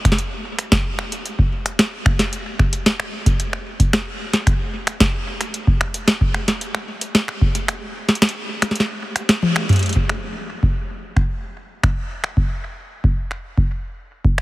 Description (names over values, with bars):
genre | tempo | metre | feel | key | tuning
IDM | 112 BPM | 4/4 | straight | none | none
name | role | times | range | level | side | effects
electronic kick drum | drums | 0.0-14.4 s | none | -18 LUFS | equal | none
booming analog drum machine | drums | 0.1-14.4 s | finger snaps, hi-hat, snare drum, toms | -20 LUFS | equal | tape echo
room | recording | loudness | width
light reverb | heavily compressed radio sound | -18 LUFS | side -18 dB against mid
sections
0.0-9.8 A section; 9.8-14.4 B section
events
kick drops out 7.7-9.8; drum fill 9.3-9.8; band accent 9.3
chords
none